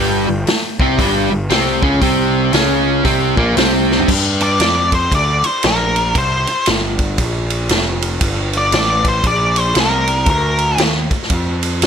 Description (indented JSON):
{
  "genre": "blues rock power trio and southern rock",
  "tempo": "116 BPM",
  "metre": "4/4",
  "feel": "swing 63% on 8ths",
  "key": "G minor",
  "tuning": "A4 = 440 Hz",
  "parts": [
    { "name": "octave-fuzz lead guitar", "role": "melody", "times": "0.0-10.8 s", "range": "Bb4 to G5", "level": "-16 LUFS", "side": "left 1 dB", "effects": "distortion, slapback echo" },
    { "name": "crunchy overdriven guitar", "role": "riff", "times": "0.0-4.1 s", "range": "G2 to C#4", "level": "-14 LUFS", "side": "equal", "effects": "none" },
    { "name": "fuzz picked electric bass", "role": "bass", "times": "0.0-11.9 s", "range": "F1 to G2", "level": "-19 LUFS", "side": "equal", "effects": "overdrive" },
    { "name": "vintage drum kit", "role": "drums", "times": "0.5-11.9 s", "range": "crash cymbal, hi-hat, kick drum, ride cymbal, snare drum, toms", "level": "-18 LUFS", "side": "equal", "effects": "none" }
  ],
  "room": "light reverb",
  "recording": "none",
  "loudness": "-13 LUFS",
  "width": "side -7 dB against mid",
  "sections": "0.0-4.1 A section; 4.1-11.9 B section",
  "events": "drum fill 3.8; lead electric guitar solo 4.1-11.9",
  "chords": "0.0 Gm; 4.1 Gm7; 6.2 C5; 8.2 Gm7"
}